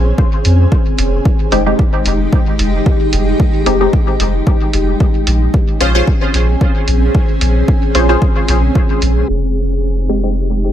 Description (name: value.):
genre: dub techno.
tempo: 112 BPM.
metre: 4/4.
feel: swing 54% on 16ths.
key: F minor.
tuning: A4 = 440 Hz.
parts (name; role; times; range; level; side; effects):
granular cloud pad; sustained chords; 0.0-10.7 s; Ab3 to Ab4; -18 LUFS; left 1 dB; built-in reverb, vintage 12-bit sampler grit, sidechain pumping.
soft dub sub bass; bass; 0.0-10.7 s; F1 to F2; -14 LUFS; equal; sidechain pumping.
electronic kick drum; drums; 0.2-8.9 s; none; -14 LUFS; equal; overdrive.
electronic hi-hat; drums; 0.4-9.1 s; none; -22 LUFS; right 2 dB; low-pass filter on hats, dub echo.
filtered dub chord stab; stabs; 1.5-10.4 s; Ab3 to C5; -18 LUFS; equal; chorus, phaser, sidechain pumping, dub echo.
room: little or no reverb.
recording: echo-heavy mix, low-pass filter.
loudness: -11 LUFS.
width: side -11 dB against mid.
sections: 0.0-9.3 A section; 9.3-10.7 B section.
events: filter sweep on synth stab 9.3-10.7.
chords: 0.0 Bbm9; 0.7 Fm9; 5.0 Bbm9; 9.3 Fm9.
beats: 0.18 | 0.72 1.25 1.79 2.32 | 2.86 3.40 3.93 4.47 | 5.00 5.54 6.07 6.61 | 7.14 7.68 8.22 8.75 | 9.29 9.82 10.36.